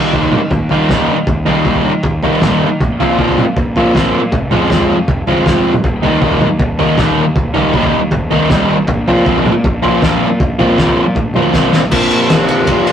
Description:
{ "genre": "indie rock", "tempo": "158 BPM", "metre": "4/4", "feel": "straight", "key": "Eb major", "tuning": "A4 = 440 Hz", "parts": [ { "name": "fuzz guitar", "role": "riff", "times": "0.0-12.9 s", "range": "Bb2 to F4", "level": "-13 LUFS", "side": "equal", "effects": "distortion" }, { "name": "fuzz fingered electric bass", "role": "bass", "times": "0.0-12.9 s", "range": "Eb1 to Eb3", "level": "-19 LUFS", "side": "equal", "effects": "overdrive" }, { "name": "cloth-damped thuddy drum kit", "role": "drums", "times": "0.1-12.9 s", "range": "crash cymbal, kick drum, ride cymbal, snare drum, toms", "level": "-15 LUFS", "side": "equal", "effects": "none" } ], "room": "light reverb", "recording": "rough rehearsal-room recording, warm saturation", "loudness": "-10 LUFS", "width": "side -9 dB against mid", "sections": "0.0-11.9 A section", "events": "drum fill 11.2-11.9", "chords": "0.0 Eb; 2.8 Bbsus2; 4.3 Fm; 5.8 Eb; 8.9 Bbsus2", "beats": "0.14 0.52 0.90 | 1.28 1.66 2.04 2.42 | 2.80 3.18 3.56 3.94 | 4.32 4.70 5.08 5.46 | 5.84 6.22 6.60 6.98 | 7.36 7.74 8.12 8.50 | 8.88 9.26 9.64 10.02 | 10.40 10.78 11.16 11.55 | 11.93 12.31 12.69" }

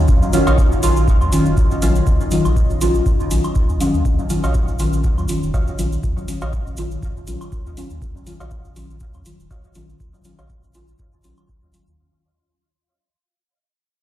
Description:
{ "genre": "dub techno", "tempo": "121 BPM", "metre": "4/4", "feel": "swing 55% on 16ths", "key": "Eb minor", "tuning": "A4 = 440 Hz", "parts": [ { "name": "deep dark ambient pad", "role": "sustained chords", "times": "0.0-12.0 s", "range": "Gb3 to F5", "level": "-28 LUFS", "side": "left 1 dB", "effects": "chorus, built-in reverb, sidechain pumping" }, { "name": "warm sub bass", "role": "bass", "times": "0.0-12.0 s", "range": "Eb1 to Ab2", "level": "-20 LUFS", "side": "equal", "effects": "sidechain pumping" }, { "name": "electronic kick drum", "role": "drums", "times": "0.1-11.6 s", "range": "none", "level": "-19 LUFS", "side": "equal", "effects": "none" }, { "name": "cabasa", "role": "percussion", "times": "0.1-12.0 s", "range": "none", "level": "-34 LUFS", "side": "right 2 dB", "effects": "none" }, { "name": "congas and woodblock", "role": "percussion", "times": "0.2-11.5 s", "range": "none", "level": "-32 LUFS", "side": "left 3 dB", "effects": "sidechain pumping on perc, dub echo" }, { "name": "deep mellow chord stab", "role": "stabs", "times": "0.3-11.9 s", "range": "Eb3 to F4", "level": "-21 LUFS", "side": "left 1 dB", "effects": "chorus, phaser, sidechain pumping, dub echo" }, { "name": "electronic hi-hat", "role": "drums", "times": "0.3-11.8 s", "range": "none", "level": "-32 LUFS", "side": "left 1 dB", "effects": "none" }, { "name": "wavetable chord stab", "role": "riff", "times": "0.5-0.6, 4.4-10.6 s", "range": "Gb4 to F5", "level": "-30 LUFS", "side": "right 2 dB", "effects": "sidechain pumping, dub echo" } ], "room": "light reverb, digital ambience", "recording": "played on a big sound system in a bare room, large studio reverb", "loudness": "-15 LUFS", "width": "side -13 dB against mid", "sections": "0.0-12.0 A section", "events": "fade-out 0.0-12.0; filter sweep on synth stab 0.0-12.0", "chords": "0.0 Ebm9", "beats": "| 0.09 0.58 1.08 1.57 | 2.07 2.56 3.06 3.56 | 4.05 4.55 5.04 5.54 | 6.04 6.53 7.03 7.52 | 8.02 8.51 9.01 9.51 | 10.00 10.50 10.99 11.49" }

